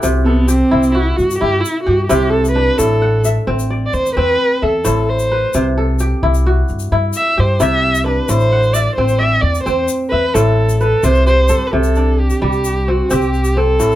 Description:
west african traditional, West African string and xylophone music; 87 BPM (dotted quarters); 12/8; straight; C lydian; A4 = 440 Hz
kora; arpeggios; 0.0-14.0 s; A2 to F#5; -18 LUFS; equal
upright bass; bass; 0.0-14.0 s; A1 to G2; -16 LUFS; equal
tube shaker; percussion; 0.0-14.0 s; -29 LUFS; left 8 dB
dark viola; melody; 0.2-14.0 s; B3 to E5; -16 LUFS; right 1 dB
light reverb; -12 LUFS; side -13 dB against mid
0.0-11.0 A section; 11.0-14.0 B section
viola solo 0.0-11.0
0.0 C; 2.8 Am; 5.5 C; 8.3 Am; 11.0 C5

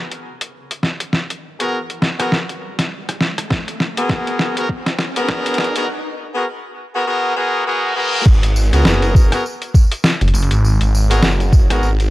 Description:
glitch hop; 101 BPM; 4/4; swing 58% on 16ths; G# minor; A4 = 441 Hz
riser and reverse cymbal; sound effects; 0.7-8.3 s; -29 LUFS; left 1 dB
boom bap sampler-style drum kit; drums; 0.1-12.1 s; crash cymbal, hi-hat, rim click, snare drum; -19 LUFS; equal
clear horn section; stabs; 1.6-11.9 s; B3 to A#4; -20 LUFS; left 1 dB; sidechain pumping, tape echo
electronic kick drum; drums; 3.5-11.7 s; -11 LUFS; equal
phased detuned saw bass; bass; 8.3-12.1 s; F#1 to C#2; -15 LUFS; equal; phaser, tube saturation
tambourine; percussion; 8.3-12.1 s; -31 LUFS; equal
rubbery square bass; bass; 10.2-10.3 s; F#1; -13 LUFS; equal
little or no reverb; dry, gritty hardware recording, cassette tape, high-pass filter; -14 LUFS; side -17 dB against mid
0.0-8.3 A section; 8.3-12.1 B section
build-up 0.0-8.3; drum fill 0.0-5.9; riser 0.7-5.9; reverse cymbal 7.6-8.3; drop 8.3-12.1
0.0 G#m9

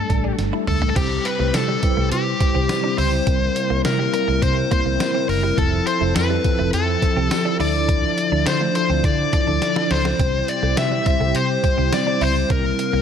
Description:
1980s-style pop; 104 BPM; 4/4; straight; C major; A4 = 440 Hz
dark smooth lead guitar; melody; 0.0-13.0 s; G4 to E5; -22 LUFS; left 4 dB; overdrive, ping-pong delay
mellow tine electric piano; accompaniment; 0.0-13.0 s; F3 to C5; -24 LUFS; equal; medium stereo tremolo
vintage muted fingered electric bass; bass; 0.0-13.0 s; F1 to D3; -23 LUFS; equal
direct-recorded clean electric guitar; riff; 0.1-13.0 s; F3 to E4; -31 LUFS; right 7 dB; analog chorus
trip hop sampler-style drum kit; drums; 0.1-12.9 s; crash cymbal, hi-hat, kick drum, snare drum, tambourine, toms; -23 LUFS; equal; gated reverb
brassy analog pad; sustained chords; 1.0-13.0 s; C3 to A4; -29 LUFS; right 1 dB; chorus
light reverb, digital ambience; -17 LUFS; side -8 dB against mid
1.0-13.0 A section
drum fill 0.4-1.0, 9.6-10.2
0.0 Gsus2; 1.0 C; 3.3 C7; 5.6 Fmaj7; 7.6 Dmadd9; 10.2 C; 12.5 C7

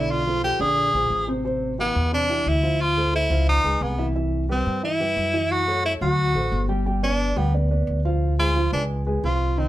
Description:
Afro-Cuban jazz; 177 BPM; 4/4; straight; A4 = 435 Hz
clear tenor saxophone; melody; 0.0-9.7 s; B3 to G#4; -22 LUFS; equal
dark grand piano; accompaniment; 0.0-9.7 s; B#2 to G5; -27 LUFS; right 1 dB
upright bass; bass; 0.0-9.7 s; G1 to G2; -24 LUFS; equal
light reverb; -20 LUFS; side -15 dB against mid
0.0-6.9 A section; 6.9-9.7 B section
tenor saxophone solo 6.9-9.7
0.1 Bm7b5; 0.8 A#9; 1.4 Am9; 2.8 Dm7; 3.5 C#9; 4.2 Cmaj7; 5.5 F#m7; 6.2 D7; 6.9 G; 8.2 Dm7b5; 8.9 C#7

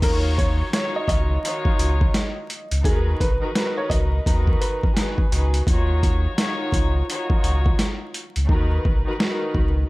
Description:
hip hop, boom-bap hip-hop; 85 BPM; 4/4; swing 62% on 16ths; Eb minor; A4 = 439 Hz
clear upright piano; melody; 0.0-5.6 s; Ab4 to Eb5; -29 LUFS; right 1 dB; high-pass filter, low-pass filter, slapback echo
dark chamber string section; accompaniment; 0.0-9.9 s; Eb3 to Db5; -27 LUFS; left 1 dB; cassette tape, high-pass filter, low-pass filter
sub bass with octave; bass; 0.0-9.8 s; Cb2 to Eb2; -21 LUFS; equal
boom bap sampler-style drum kit; drums; 0.0-9.8 s; crash cymbal, hi-hat, kick drum, snare drum; -22 LUFS; equal; overdrive
little or no reverb; vinyl crackle; -19 LUFS; side -21 dB against mid
0.0-9.9 A section
hi-hats muted 8.5-9.9
0.0 Ebm7; 2.8 Abm7; 5.7 Ebm7; 8.5 Bmaj9

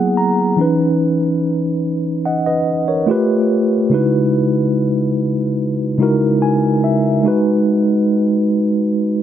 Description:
R&B; 72 BPM; 4/4; straight; A4 = 441 Hz
mellow tine electric piano; solo; 0.0-9.2 s; C#3 to A#5; -14 LUFS; equal; medium stereo tremolo, ping-pong delay
light reverb; -14 LUFS; side -10 dB against mid
0.6-9.2 A section
tine electric piano fill 0.0-0.6, 6.0-7.3
0.0 G#m9; 0.6 C#m9; 3.1 G9; 3.9 F#13sus4/C#; 7.3 B6

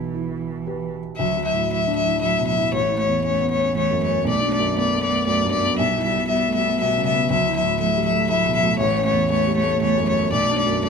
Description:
neoclassical piano and strings; 118 BPM; 3/4; rubato; D major; A4 = 437 Hz
rich cello; second line; 0.0-10.9 s; E3 to A3; -26 LUFS; right 8 dB
felt-muted upright piano; accompaniment; 0.0-10.9 s; A1 to B4; -23 LUFS; right 2 dB
clear violin; melody; 1.2-10.9 s; C#5 to E5; -21 LUFS; left 6 dB
moderate large studio reverb, RT60 1.4 s; close, detailed microphones; -18 LUFS; side -6 dB against mid
0.0-1.2 A section; 1.2-10.9 B section
0.0 G6/B; 1.2 Dadd9; 2.7 A; 4.3 Bm7; 5.8 G6/B; 7.3 Dadd9; 8.8 A; 10.3 Bm7

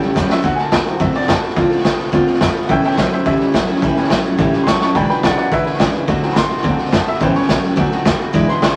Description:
rockabilly; 213 BPM; 4/4; straight; A4 = 441 Hz
bright upright piano; accompaniment; 0.0-8.8 s; C#3 to C#6; -23 LUFS; equal
picked steel-string acoustic guitar; accompaniment; 0.0-8.8 s; A2 to B4; -21 LUFS; equal
electric guitar through a small old amp; riff; 0.0-8.8 s; E2 to C4; -25 LUFS; equal
upright bass; bass; 0.0-8.7 s; E1 to F#2; -29 LUFS; equal
raw garage drum kit; drums; 0.0-8.7 s; hi-hat, kick drum, snare drum; -20 LUFS; equal
moderate studio reverb, RT60 0.8 s; vinyl crackle; -16 LUFS; mono
0.0-8.8 A section
upright piano solo 0.0-8.8; drum fill 0.2, 4.8
0.4 D7; 1.6 Dm7; 2.7 A7; 5.0 E7; 6.1 D7; 7.2 A7; 7.8 D7

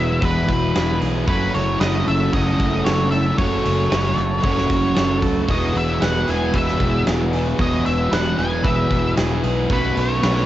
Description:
rock, shoegaze and dream pop; 114 BPM; 4/4; straight; E major; A4 = 439 Hz
octave-fuzz lead guitar; melody; 0.0-10.5 s; B4 to G#5; -24 LUFS; equal; distortion, cassette tape, analog delay
chorused pulse-width pad; sustained chords; 0.0-10.5 s; E3 to B4; -25 LUFS; equal; cassette tape
twangy electric guitar; arpeggios; 0.0-10.5 s; G#4 to C#5; -33 LUFS; right 7 dB; wide subtle chorus, cassette tape, analog delay
overdriven electric guitar; riff; 0.0-10.5 s; E2 to G#4; -25 LUFS; right 6 dB; reverse reverb, cassette tape
thick fuzz guitar; riff; 0.0-10.5 s; E2 to B3; -25 LUFS; left 5 dB; distortion, ensemble chorus, cassette tape
fuzz fingered electric bass; bass; 0.0-10.5 s; E1 to C#2; -23 LUFS; equal; overdrive
huge arena drum kit; drums; 0.2-10.4 s; hi-hat, kick drum, snare drum; -24 LUFS; equal; cassette tape
small room ambience; home recording on cassette, nothing above 7.7 kHz; -17 LUFS; side -13 dB against mid
0.0-10.5 A section
0.0 E; 1.3 F#m7; 5.5 E; 9.7 B7sus2

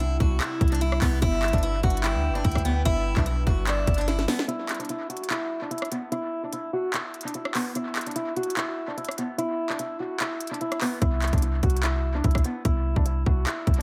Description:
hip hop, trap; 147 BPM; 4/4; half-time; A4 = 440 Hz
picked steel-string acoustic guitar; melody; 0.0-13.8 s; B3 to F#4; -32 LUFS; equal; low-pass filter, dub echo
warbly tape-like pad; sustained chords; 0.0-4.5 s; C3 to B4; -39 LUFS; equal; chorus, built-in reverb, phaser
clean 808-style bass; bass; 0.0-4.3, 11.0-13.8 s; G1 to D2; -27 LUFS; equal
trap drum kit; drums; 0.0-13.8 s; handclaps, hi-hat, kick drum, rim click, snare drum; -30 LUFS; equal; dub echo
breathy flute-like synth lead; second line; 1.2-4.1 s; D5 to G5; -37 LUFS; equal; chorus, dub echo
little or no reverb; echo-heavy mix; -26 LUFS; mono
0.0-4.5 A section; 4.5-13.8 B section
drum fill 4.1-4.5; break 4.5-11.0
0.0 C; 1.2 G; 4.5 N.C.; 11.0 C

